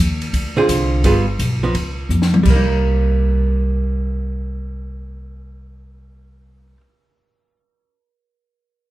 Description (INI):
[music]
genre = jazz, small-group swing and bop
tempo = 170 BPM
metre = 4/4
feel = swing 64% on 8ths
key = C minor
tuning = A4 = 440 Hz
[part]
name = upright bass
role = bass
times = 0.0-6.7 s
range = G1 to F2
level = -18 LUFS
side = equal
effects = none
[part]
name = compact cocktail drum kit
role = drums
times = 0.2-2.6 s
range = crash cymbal, hi-hat, kick drum, ride cymbal, snare drum, toms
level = -21 LUFS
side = left 2 dB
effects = none
[part]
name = archtop guitar, miked and amplified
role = accompaniment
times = 0.6-6.8 s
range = D3 to Ab4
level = -19 LUFS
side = right 3 dB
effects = none
[sound]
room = wet large studio reverb, RT60 0.9 s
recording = band playing live in one room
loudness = -15 LUFS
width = side -16 dB against mid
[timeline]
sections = 0.0-2.5 A section; 2.5-5.3 B section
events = drum fill 2.1-2.5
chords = 0.3 Dm7b5; 1.0 G7b9; 1.8 Db; 2.5 Cm7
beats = 0.34 0.69 | 1.04 1.40 1.75 2.10 | 2.46 2.81 3.16 3.52 | 3.87 4.22 4.57 4.93